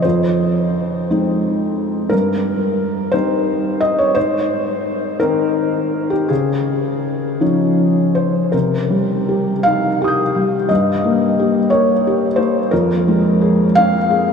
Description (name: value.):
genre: neoclassical minimalist piano.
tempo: 52-61 BPM (dotted quarters).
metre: 6/8.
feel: rubato.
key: unclear.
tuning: A4 = 440 Hz.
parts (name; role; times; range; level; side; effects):
felt-muted upright piano; solo; 0.0-14.3 s; F2 to G6; -14 LUFS; left 1 dB; tape echo.
room: wet huge ambient reverb, RT60 7.8 s.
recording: dreamy mix soaked in reverb.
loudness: -14 LUFS.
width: side -6 dB against mid.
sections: 0.0-8.5 A section; 8.5-14.3 B section.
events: none.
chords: 0.0 Fm7; 2.1 Cm/G; 4.2 Ab; 6.3 Dbadd9; 8.5 Cm7; 10.7 Gdim; 12.7 Fm.